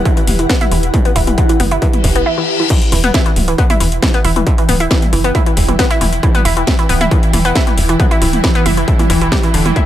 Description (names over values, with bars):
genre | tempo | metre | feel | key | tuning
driving peak-time techno | 136 BPM | 4/4 | straight | E minor | A4 = 440 Hz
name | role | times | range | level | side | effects
tight sequencer bass | bass | 0.0-9.7 s | D1 to F#1 | -17 LUFS | equal | sidechain pumping
swarming drone | drone | 0.0-9.9 s | E3 to E4 | -22 LUFS | right 1 dB | built-in reverb, sidechain pumping
granular cloud pad | texture | 0.0-9.9 s | E4 to G5 | -24 LUFS | right 1 dB | built-in reverb, sidechain pumping
analog pluck | riff | 0.1-9.8 s | D3 to E4 | -17 LUFS | equal | chorus, overdrive, sidechain pumping, tape echo
electronic kick drum | drums | 0.1-9.9 s | none | -14 LUFS | equal | distortion
techno drum kit | drums | 0.1-9.9 s | crash cymbal, hi-hat, snare drum, toms | -18 LUFS | left 1 dB | sidechain pumping on hats, sidechain pumping on toms, sidechain pumping on cymbals
reverse cymbal | sound effects | 2.0-2.7 s | none | -20 LUFS | left 6 dB | none
room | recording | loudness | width
little or no reverb | none | -10 LUFS | side -12 dB against mid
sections
0.0-2.7 A section; 2.7-9.9 B section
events
reverse cymbal 2.0-2.7; drop 2.7-9.9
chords
0.0 Em